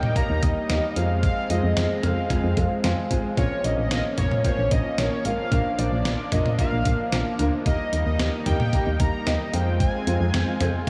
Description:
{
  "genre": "synth-pop",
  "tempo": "112 BPM",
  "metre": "4/4",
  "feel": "straight",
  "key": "Bb dorian",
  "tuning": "A4 = 440 Hz",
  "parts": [
    { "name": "fat analog lead", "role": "melody", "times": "0.0-10.9 s", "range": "Db5 to Bb5", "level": "-31 LUFS", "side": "equal", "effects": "analog delay" },
    { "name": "warm baby grand piano", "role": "accompaniment", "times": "0.0-10.9 s", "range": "Ab3 to C6", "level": "-32 LUFS", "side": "equal", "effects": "lush chorus" },
    { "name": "lush unison pad", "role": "sustained chords", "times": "0.0-10.9 s", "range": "F3 to F4", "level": "-33 LUFS", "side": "equal", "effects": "chorus" },
    { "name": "detuned 8-bit digital drum machine", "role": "drums", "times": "0.0-10.9 s", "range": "cowbell, hi-hat, kick drum, snare drum, toms", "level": "-28 LUFS", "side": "equal", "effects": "none" },
    { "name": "solid FM bass", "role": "bass", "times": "0.3-10.9 s", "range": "Ab1 to F2", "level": "-27 LUFS", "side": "equal", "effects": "none" }
  ],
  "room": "wet cathedral reverb, RT60 5.5 s",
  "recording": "dreamy mix soaked in reverb",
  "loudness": "-23 LUFS",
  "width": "mono",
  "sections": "0.0-10.9 A section",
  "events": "grand piano fill 2.6-3.4",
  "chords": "0.0 Eb; 1.0 Fm; 3.4 Bbm; 5.5 Bb; 7.7 Eb; 9.5 Fm"
}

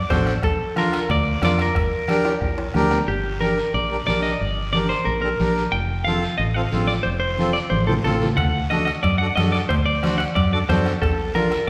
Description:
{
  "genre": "latin, cumbia",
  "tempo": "181 BPM",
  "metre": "4/4",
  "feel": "straight",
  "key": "G minor",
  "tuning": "A4 = 440 Hz",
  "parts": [
    { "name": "fingered electric bass", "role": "bass", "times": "0.0-11.6 s", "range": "F1 to F#2", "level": "-27 LUFS", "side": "equal", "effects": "none" },
    { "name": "clean electric guitar", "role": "melody", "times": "0.1-11.7 s", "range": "G4 to G5", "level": "-26 LUFS", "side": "equal", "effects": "spring reverb" },
    { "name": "accordion", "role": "accompaniment", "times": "0.1-11.5 s", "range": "C4 to C5", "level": "-28 LUFS", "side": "equal", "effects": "none" },
    { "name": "bombo", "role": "percussion", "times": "0.1-3.1, 8.4-11.7 s", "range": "none", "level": "-29 LUFS", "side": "equal", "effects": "none" },
    { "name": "congas", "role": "percussion", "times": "0.1-11.5 s", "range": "none", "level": "-29 LUFS", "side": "equal", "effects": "none" },
    { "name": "guiro", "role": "percussion", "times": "0.1-11.7 s", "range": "none", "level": "-40 LUFS", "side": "equal", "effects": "none" },
    { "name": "timbales", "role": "percussion", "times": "0.1-3.0, 8.4-11.7 s", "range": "none", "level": "-36 LUFS", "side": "equal", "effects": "none" }
  ],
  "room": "wet recital hall reverb, RT60 1.6 s",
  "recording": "recorded in a church or concert hall",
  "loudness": "-21 LUFS",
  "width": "mono",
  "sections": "0.0-3.1 A section; 3.1-11.7 B section",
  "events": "drum fill 2.3-3.1, 7.7-8.4",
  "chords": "0.4 Bb; 1.8 Gm; 5.7 F; 8.4 D; 11.0 Bb"
}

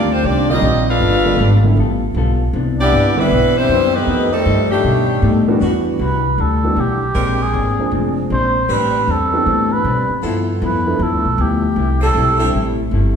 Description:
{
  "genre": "jazz, big band swing",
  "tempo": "156 BPM",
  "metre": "4/4",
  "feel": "swing 64% on 8ths",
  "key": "G major, E minor from 5.6 s",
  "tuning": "A4 = 440 Hz",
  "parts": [
    { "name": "bright saxophone section", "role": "melody", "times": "0.0-5.4 s", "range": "Eb3 to F5", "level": "-17 LUFS", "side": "left 2 dB", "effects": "none" },
    { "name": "warm trombone section", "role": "second line", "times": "0.0-5.4 s", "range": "A2 to F4", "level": "-21 LUFS", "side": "right 3 dB", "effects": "none" },
    { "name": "vintage hollow-body jazz guitar", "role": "accompaniment", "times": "0.0-13.2 s", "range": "G2 to A4", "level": "-23 LUFS", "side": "left 2 dB", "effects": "none" },
    { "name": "upright bass", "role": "bass", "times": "0.0-13.2 s", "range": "E#1 to B2", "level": "-17 LUFS", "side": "left 1 dB", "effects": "none" },
    { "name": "warm upright piano", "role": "accompaniment", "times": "0.5-12.5 s", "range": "D3 to A4", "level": "-22 LUFS", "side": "right 3 dB", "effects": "none" },
    { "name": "clear saxophone section", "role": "sustained chords", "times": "5.6-12.5 s", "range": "E3 to B4", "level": "-24 LUFS", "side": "right 1 dB", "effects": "none" },
    { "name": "trumpet with cup mute", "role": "melody", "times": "6.0-12.5 s", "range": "G4 to B#4", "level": "-19 LUFS", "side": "right 2 dB", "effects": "none" }
  ],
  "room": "wet recital hall reverb, RT60 1.5 s",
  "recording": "recorded in a church or concert hall",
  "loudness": "-13 LUFS",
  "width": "side -7 dB against mid",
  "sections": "0.0-5.6 A section; 5.6-13.2 B section",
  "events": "muted trumpet solo 5.6-13.2",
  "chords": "0.0 Ebmaj13; 1.0 G9; 2.5 Cmaj9; 4.1 F9; 4.8 B7alt; 5.6 Em9; 7.2 A#9; 8.7 Am11; 10.2 G13; 11.8 C6"
}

